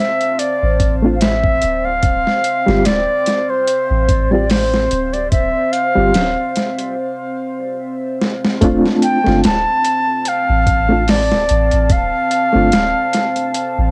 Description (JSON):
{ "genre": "trip hop", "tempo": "73 BPM", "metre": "4/4", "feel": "swing 55% on 16ths", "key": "D minor", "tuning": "A4 = 440 Hz", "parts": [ { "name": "reedy concert flute", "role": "melody", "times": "0.0-13.9 s", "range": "C5 to A5", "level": "-20 LUFS", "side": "equal", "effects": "cassette tape, tape echo" }, { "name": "dark analog pad", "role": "sustained chords", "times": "0.0-13.9 s", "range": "C4 to A5", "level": "-26 LUFS", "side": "equal", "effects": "chorus" }, { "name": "dusty soul sampler-style drum kit", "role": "drums", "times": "0.2-13.8 s", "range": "hi-hat, kick drum, snare drum", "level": "-20 LUFS", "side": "equal", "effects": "overdrive, cassette tape" }, { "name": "soft 808-style bass", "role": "bass", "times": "0.6-13.9 s", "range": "D1 to A1", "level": "-21 LUFS", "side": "equal", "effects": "none" }, { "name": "reed electric piano", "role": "accompaniment", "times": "1.0-12.7 s", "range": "G3 to G4", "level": "-18 LUFS", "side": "equal", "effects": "fast tremolo, vintage 12-bit sampler grit" } ], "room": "little or no reverb", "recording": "home recording on cassette", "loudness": "-16 LUFS", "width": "mono", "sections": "0.0-8.6 A section; 8.6-13.9 B section", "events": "break 7.0-8.6; drum fill 8.2-8.6", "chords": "0.0 Dm7" }